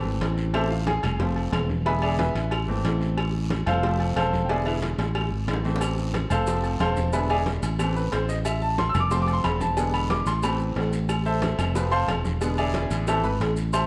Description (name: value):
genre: latin, salsa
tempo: 182 BPM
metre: 4/4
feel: straight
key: A harmonic minor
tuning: A4 = 440 Hz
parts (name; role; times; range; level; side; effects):
- bright grand piano; accompaniment; 0.0-13.9 s; D3 to E6; -29 LUFS; equal; none
- fingered electric bass; bass; 0.0-13.9 s; E1 to A1; -28 LUFS; equal; none
- congas; percussion; 0.0-13.9 s; none; -35 LUFS; equal; none
- cowbell and bongos; percussion; 0.2-13.9 s; none; -38 LUFS; equal; none
- guiro; percussion; 0.2-13.9 s; none; -45 LUFS; equal; none
- timbales and agogo bells; percussion; 0.2-13.9 s; none; -36 LUFS; equal; none
- claves; percussion; 0.5-13.9 s; none; -42 LUFS; equal; none
- maracas; percussion; 5.8-13.9 s; none; -47 LUFS; equal; none
room: moderate large studio reverb, RT60 1.2 s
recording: worn, warbling old tape, cassette tape, warbly pitch drift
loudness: -25 LUFS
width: mono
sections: 0.0-13.9 A section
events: grand piano solo 0.0-13.9; drum fill 5.0-5.8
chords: 0.0 Am; 1.2 F; 1.9 E7; 2.5 Am; 3.8 F; 4.5 E7; 5.2 Am; 6.5 F; 7.1 E7; 7.8 Am; 9.1 F; 9.8 E7; 10.4 Am; 11.8 F; 12.4 E7; 13.1 Am